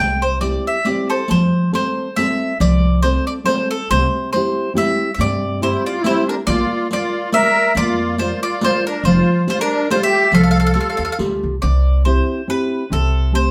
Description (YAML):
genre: italian folk, Italian serenade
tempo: 139 BPM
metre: 3/4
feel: swing 55% on 8ths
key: F major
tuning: A4 = 441 Hz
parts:
  - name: mandolin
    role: melody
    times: 0.0-13.5 s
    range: A4 to G5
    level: -22 LUFS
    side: equal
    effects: none
  - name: nylon-string guitar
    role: accompaniment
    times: 0.0-13.5 s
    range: C3 to D5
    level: -22 LUFS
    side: equal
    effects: none
  - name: upright bass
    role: bass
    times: 0.0-13.5 s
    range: F1 to G2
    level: -21 LUFS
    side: equal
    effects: none
  - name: riq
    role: percussion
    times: 0.2-11.4 s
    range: none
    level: -28 LUFS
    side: equal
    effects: none
  - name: musette accordion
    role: second line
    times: 5.6-11.2 s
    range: D4 to Bb4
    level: -23 LUFS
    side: equal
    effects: none
room: moderate studio reverb, RT60 0.7 s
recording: band playing live in one room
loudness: -17 LUFS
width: mono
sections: 0.0-1.3 A section; 1.3-11.6 B section; 11.6-13.5 A section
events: none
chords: 0.0 C; 1.3 F; 3.9 C; 6.5 Bb; 9.0 Fadd9; 11.6 C; 12.9 Am7/C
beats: 0.42 0.86 | 1.29 1.73 2.17 | 2.60 3.03 3.46 | 3.89 4.31 4.74 | 5.17 5.60 6.03 | 6.46 6.90 7.33 | 7.75 8.18 8.61 | 9.04 9.46 9.89 | 10.32 10.75 11.19 | 11.62 12.06 12.48 | 12.91 13.34